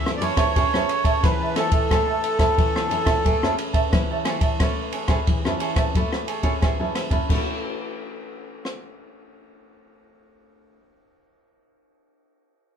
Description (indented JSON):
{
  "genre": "samba and choro",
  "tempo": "89 BPM",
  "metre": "4/4",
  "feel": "straight",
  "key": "A major",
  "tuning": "A4 = 441 Hz",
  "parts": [
    { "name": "accordion", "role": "melody", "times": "0.0-3.5 s", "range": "A4 to E5", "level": "-23 LUFS", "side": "right 1 dB", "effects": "light tremolo tuning" },
    { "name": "cavaquinho", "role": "accompaniment", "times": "0.0-10.8 s", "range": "G#4 to A5", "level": "-27 LUFS", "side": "right 6 dB", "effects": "none" },
    { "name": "nylon-string guitar", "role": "accompaniment", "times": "0.0-10.8 s", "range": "E3 to B4", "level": "-28 LUFS", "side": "left 3 dB", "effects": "none" },
    { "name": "open jazz drum kit", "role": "drums", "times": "0.1-8.8 s", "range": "crash cymbal, kick drum, ride cymbal, rim click", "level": "-22 LUFS", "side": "equal", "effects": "none" }
  ],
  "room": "moderate studio reverb, RT60 0.6 s",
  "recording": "heard from further back in the room",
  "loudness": "-19 LUFS",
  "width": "side -8 dB against mid",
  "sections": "0.0-4.6 A section; 4.6-7.3 B section; 7.3-10.0 C section",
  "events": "none",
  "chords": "0.0 Amaj9; 7.3 Aadd9"
}